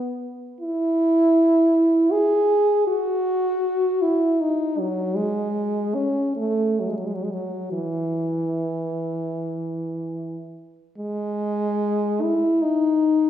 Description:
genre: classical, free, expressive piece for unaccompanied French horn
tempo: 40-82 BPM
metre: 3/4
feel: rubato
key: E major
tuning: A4 = 440 Hz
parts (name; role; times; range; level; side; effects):
- warm French horn; solo; 0.0-13.3 s; E3 to G#4; -20 LUFS; equal; none
room: wet recital hall reverb, RT60 1.6 s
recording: recorded in a church or concert hall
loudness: -20 LUFS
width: side -10 dB against mid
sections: 0.0-11.0 A section; 11.0-13.3 B section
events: none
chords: none

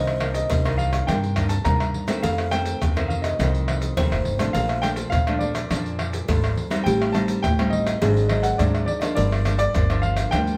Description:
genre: samba and choro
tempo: 104 BPM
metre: 4/4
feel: straight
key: unclear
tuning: A4 = 441 Hz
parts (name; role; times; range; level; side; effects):
- warm baby grand piano; melody; 0.0-10.6 s; D5 to Bb5; -29 LUFS; equal; plate reverb
- buzzing kalimba; second line; 0.0-10.6 s; G4 to C5; -32 LUFS; equal; none
- nylon-string guitar; accompaniment; 0.0-10.6 s; F2 to Eb4; -30 LUFS; equal; none
- upright bass; bass; 0.0-10.6 s; F1 to F3; -27 LUFS; equal; none
- egg shaker, pandeiro, tamborim and surdo; percussion; 0.1-10.6 s; none; -28 LUFS; equal; none
room: moderate studio reverb, RT60 0.8 s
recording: none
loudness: -22 LUFS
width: mono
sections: 0.0-10.6 A section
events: none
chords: 0.0 Cm9; 2.2 F7; 4.5 Bbmaj7; 6.9 Am7b5; 8.0 Ab7#11; 9.2 Gm7

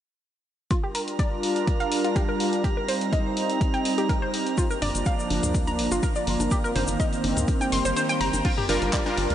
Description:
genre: progressive house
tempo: 124 BPM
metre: 4/4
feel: straight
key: G minor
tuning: A4 = 444 Hz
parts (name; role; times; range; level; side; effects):
- warm analog pad; sustained chords; 0.7-9.3 s; Eb3 to Bb4; -27 LUFS; equal; chorus, sidechain pumping
- analog pluck; arpeggios; 0.7-9.0 s; F4 to C6; -29 LUFS; equal; chorus, sidechain pumping, diffuse ambient delay
- deep house drum kit; drums; 0.7-9.3 s; crash cymbal, handclaps, hi-hat; -34 LUFS; left 2 dB; sidechain pumping on hats, sidechain pumping on cymbals
- electronic kick drum; drums; 0.7-9.0 s; none; -25 LUFS; equal; overdrive
- drifting glass-harmonics texture; texture; 1.0-8.5 s; Bb5; -35 LUFS; right 7 dB; chorus, built-in reverb, sidechain pumping
- egg shaker; percussion; 4.6-8.4 s; none; -36 LUFS; left 4 dB; none
- tight sequencer bass; bass; 4.8-9.3 s; G1 to D2; -29 LUFS; equal; sidechain pumping
- electronic toms and congas; percussion; 4.8-9.2 s; none; -36 LUFS; left 2 dB; none
- swell; sound effects; 7.6-8.4 s; none; -38 LUFS; equal; none
- supersaw stab; stabs; 8.7-9.2 s; G3 to Bb4; -26 LUFS; left 2 dB; sidechain pumping, diffuse ambient delay
room: moderate huge ambient reverb, RT60 6.7 s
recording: dreamy mix soaked in reverb, nothing above 10.3 kHz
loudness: -22 LUFS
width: side -10 dB against mid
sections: 0.7-8.4 A section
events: filter sweep on synth arpeggio sound 0.7-8.4; swell 7.6-8.4; kick drops out 8.0-8.4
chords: 0.7 Gm7; 2.6 Eb6/G; 4.6 Bb/G; 6.5 Cm7/G; 8.4 Gm7

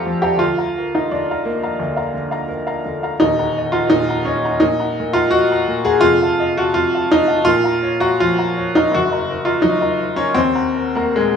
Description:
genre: classical, romantic character piece for solo piano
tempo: 85 BPM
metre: 4/4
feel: uneven beats, rubato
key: Bb major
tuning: A4 = 440 Hz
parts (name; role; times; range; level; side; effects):
- clear upright piano; solo; 0.0-11.4 s; Eb1 to Bb5; -15 LUFS; equal; none
room: moderate recital hall reverb, RT60 1.6 s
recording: none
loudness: -15 LUFS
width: side -7 dB against mid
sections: 0.0-11.4 A section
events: none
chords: 0.4 Bb/D; 3.2 Ebm; 6.0 F7; 7.5 Bbm; 8.9 Ebm/Gb; 10.4 Ebm

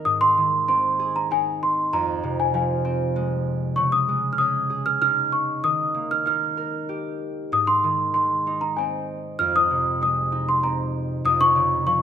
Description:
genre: children's music, lullaby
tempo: 97 BPM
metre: 3/4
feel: straight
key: Ab major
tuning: A4 = 439 Hz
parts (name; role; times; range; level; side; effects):
- concert harp; accompaniment; 0.0-12.0 s; F2 to Bb4; -27 LUFS; right 1 dB; none
- worn celesta; melody; 0.1-12.0 s; Ab5 to F6; -20 LUFS; equal; none
room: wet scoring stage reverb, RT60 1.6 s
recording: minimal, uncompressed stereo recording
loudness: -20 LUFS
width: side -8 dB against mid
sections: 0.0-12.0 A section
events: none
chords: 0.0 Ab; 1.9 Fm; 3.8 Dbsus2; 5.6 Eb; 7.5 Ab; 9.4 Fm7; 11.2 Bbmadd11/F (rootless)

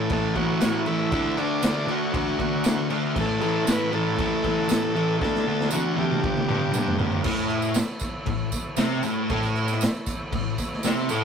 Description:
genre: garage rock duo or trio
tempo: 118 BPM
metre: 4/4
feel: straight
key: A mixolydian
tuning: A4 = 440 Hz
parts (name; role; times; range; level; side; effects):
- overdriven combo organ; melody; 0.0-7.0 s; D4 to B4; -28 LUFS; left 1 dB; none
- overdriven combo organ; sustained chords; 0.0-11.2 s; C#4 to C#6; -38 LUFS; right 1 dB; none
- fuzz guitar; riff; 0.0-11.2 s; G2 to D4; -24 LUFS; equal; distortion
- raw garage drum kit; drums; 0.1-11.2 s; crash cymbal, kick drum, snare drum, toms; -27 LUFS; equal; none
- tambourine; percussion; 0.6-11.2 s; none; -37 LUFS; right 5 dB; none
room: moderate booth ambience, RT60 0.2 s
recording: rough rehearsal-room recording, tube saturation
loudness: -22 LUFS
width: side -7 dB against mid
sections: 0.0-7.2 A section; 7.2-11.2 B section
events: drum fill 5.2-7.2; transistor combo organ fill 10.6-11.2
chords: 0.0 A; 1.1 D; 3.2 A; 5.2 D; 6.2 G; 7.2 A

